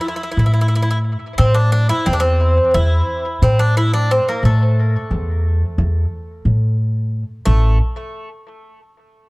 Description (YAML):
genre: Turkish makam ensemble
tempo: 178 BPM (eighths)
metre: 9/8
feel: straight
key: A minor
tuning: A4 = 439 Hz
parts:
  - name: Greek bouzouki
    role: melody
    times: 0.0-7.8 s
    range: A3 to E4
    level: -20 LUFS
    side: equal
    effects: analog delay
  - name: upright bass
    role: bass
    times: 0.4-7.8 s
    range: A1 to A2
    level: -15 LUFS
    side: equal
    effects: none
room: light reverb, studio reverb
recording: echo-heavy mix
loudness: -14 LUFS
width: side -25 dB against mid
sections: 0.0-7.5 A section; 7.5-9.3 B section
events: none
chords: none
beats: 0.04 0.38 0.71 1.05 | 1.39 1.73 2.07 2.40 2.74 3.08 3.42 3.76 4.09 | 4.43 4.77 5.11 5.44 5.78 6.12 6.46 6.79 7.13 | 7.47